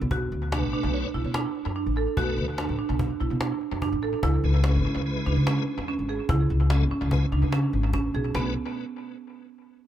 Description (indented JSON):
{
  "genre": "progressive instrumental, band music in an uneven meter",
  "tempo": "146 BPM",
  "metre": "5/4",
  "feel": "straight",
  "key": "B dorian",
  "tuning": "A4 = 444 Hz",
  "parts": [
    { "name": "upright bass", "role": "bass", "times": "0.0-8.5 s", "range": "G#1 to C#3", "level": "-25 LUFS", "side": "left 1 dB", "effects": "none" },
    { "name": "marimba with hard mallets", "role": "arpeggios", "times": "0.1-8.5 s", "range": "B3 to A4", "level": "-29 LUFS", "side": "right 5 dB", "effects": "analog delay" },
    { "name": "cajon", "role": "drums", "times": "0.1-8.4 s", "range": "none", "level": "-34 LUFS", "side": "left 1 dB", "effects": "analog delay" },
    { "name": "tonewheel organ", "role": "accompaniment", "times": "0.5-8.5 s", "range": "B2 to C#5", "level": "-34 LUFS", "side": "left 2 dB", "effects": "chorus vibrato, fast rotary speaker, analog delay" }
  ],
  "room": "light reverb",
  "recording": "echo-heavy mix",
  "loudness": "-23 LUFS",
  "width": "side -11 dB against mid",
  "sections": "0.1-8.3 A section; 8.3-9.9 B section",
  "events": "kick and snare drop out 8.1",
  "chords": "0.1 Bm7; 4.2 Amaj9 (rootless); 8.3 Bm7"
}